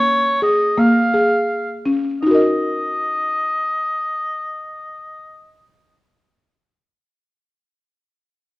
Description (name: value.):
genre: contemporary instrumental, chamber music in an uneven meter.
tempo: 165 BPM (eighths).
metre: 7/8.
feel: straight.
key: Eb minor.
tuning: A4 = 440 Hz.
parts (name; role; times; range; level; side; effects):
warm oboe; melody; 0.0-5.5 s; Db5 to F5; -20 LUFS; equal; none.
buzzing marimba with soft mallets; arpeggios; 0.0-6.3 s; Bb3 to Eb5; -17 LUFS; equal; none.
room: moderate recital hall reverb, RT60 1.5 s.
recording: worn, warbling old tape, cassette tape, warbly pitch drift.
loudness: -16 LUFS.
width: side -19 dB against mid.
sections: 0.0-2.2 A section; 2.2-4.8 B section.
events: none.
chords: 0.0 Bb5; 2.2 Ebm.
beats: 0.06 0.42 0.77 1.13 1.49 1.85 | 2.22 2.58 2.95 3.31 3.67 4.04 4.40.